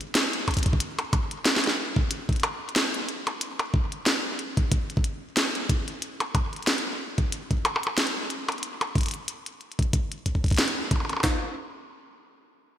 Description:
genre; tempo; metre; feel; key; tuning
IDM; 92 BPM; 4/4; swing 56% on 16ths; none; none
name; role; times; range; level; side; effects
glitchy drum kit; drums; 0.0-11.2 s; hi-hat, percussion blips, snare drum; -26 LUFS; equal; small room ambience, gated reverb, digital delay
jungle sampler-style drum kit; drums; 0.5-11.4 s; handclaps, kick drum, snare drum; -24 LUFS; equal; small room ambience, gated reverb
room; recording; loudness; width
moderate lush hall reverb, RT60 3.2 s; bright 1980s-style digital production; -24 LUFS; side -11 dB against mid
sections
0.0-11.2 A section; 11.2-12.8 B section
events
none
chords
none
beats
0.15 | 0.80 1.46 2.11 2.76 | 3.41 4.06 4.72 5.37 | 6.02 6.67 7.32 7.98 | 8.63 9.28 9.93 10.59 | 11.24

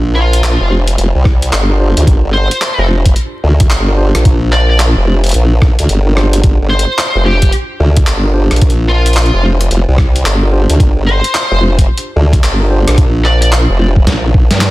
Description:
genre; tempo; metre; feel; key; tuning
glitch hop; 110 BPM; 4/4; swing 62% on 16ths; G minor; A4 = 439 Hz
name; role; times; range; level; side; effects
mellow tine electric piano; stabs; 0.0-13.9 s; D4 to C5; -20 LUFS; right 1 dB; vintage 12-bit sampler grit, sidechain pumping, tape echo
formant-sweep wobble bass; bass; 0.0-14.7 s; F1 to G2; -11 LUFS; equal; chorus
high-gain lead guitar; melody; 0.2-13.5 s; F4 to D5; -18 LUFS; left 1 dB; distortion, tape echo
boom bap sampler-style drum kit; drums; 0.3-14.7 s; handclaps, hi-hat, rim click, snare drum; -17 LUFS; equal; soft clipping on snare
electronic kick drum; drums; 1.3-14.5 s; none; -10 LUFS; equal; none
room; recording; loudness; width
digital ambience; dense, heavily limited modern master, vinyl crackle; -8 LUFS; side -18 dB against mid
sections
0.0-14.7 A section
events
drum fill 14.1-14.7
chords
0.0 Gm7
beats
0.43 0.98 1.53 | 2.07 2.62 3.16 3.71 | 4.25 4.80 5.34 5.89 | 6.43 6.98 7.53 8.07 | 8.62 9.16 9.71 10.25 | 10.80 11.35 11.89 12.44 | 12.98 13.53 14.07 14.62

